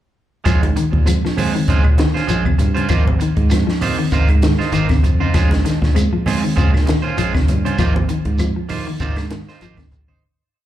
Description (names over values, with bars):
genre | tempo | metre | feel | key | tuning
afrobeat | 98 BPM | 4/4 | swing 55% on 16ths | Bb minor | A4 = 440 Hz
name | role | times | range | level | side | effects
electric guitar at the edge of break-up | stabs | 0.4-10.2 s | Ab3 to C5 | -24 LUFS | right 6 dB | tape echo, slapback echo
reed electric piano | accompaniment | 0.5-9.1 s | Db3 to Eb4 | -26 LUFS | right 4 dB | slapback echo
mellow electric guitar | arpeggios | 0.5-10.2 s | C3 to Ab3 | -22 LUFS | left 4 dB | wide subtle chorus, slapback echo
fingered electric bass | bass | 0.5-10.2 s | Ab1 to Bb2 | -20 LUFS | equal | none
compact cocktail drum kit | drums | 0.5-10.1 s | hi-hat, kick drum, snare drum | -18 LUFS | equal | none
claves | percussion | 0.5-9.9 s | none | -35 LUFS | right 1 dB | slapback echo
congas | percussion | 0.5-10.1 s | none | -26 LUFS | right 1 dB | none
shekere | percussion | 0.5-10.1 s | none | -27 LUFS | equal | none
room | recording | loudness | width
little or no reverb | live gig heard through the venue's PA, club reverb | -14 LUFS | side -12 dB against mid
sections
0.5-10.2 groove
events
fade-out 7.8-10.2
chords
0.5 Bbm9; 2.9 Ab69; 5.3 Bbm9; 7.8 Ab69